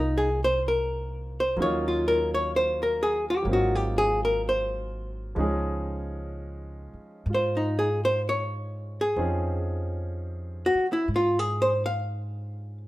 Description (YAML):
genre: jazz ballad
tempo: 63 BPM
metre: 4/4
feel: swing 66% on 8ths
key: Db major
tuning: A4 = 441 Hz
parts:
  - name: archtop guitar, miked and amplified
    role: melody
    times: 0.0-12.8 s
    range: Eb4 to F5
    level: -24 LUFS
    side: equal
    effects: none
  - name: warm baby grand piano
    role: accompaniment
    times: 0.0-12.9 s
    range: F3 to Ab4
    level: -33 LUFS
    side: right 1 dB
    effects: none
  - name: upright bass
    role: bass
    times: 0.0-12.9 s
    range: Ab1 to Ab2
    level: -31 LUFS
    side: equal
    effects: none
room: wet studio reverb, RT60 0.5 s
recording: rough home demo mix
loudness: -24 LUFS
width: side -17 dB against mid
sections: 0.0-12.9 A section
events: hollow-body jazz guitar solo 0.0-12.9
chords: 0.0 Fm7; 1.6 Ebm7; 3.5 Ab13; 5.4 Dbmaj7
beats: 0.63 | 1.58 2.53 3.48 4.42 | 5.37 6.32 7.27 8.22 | 9.17 10.12 11.07 12.03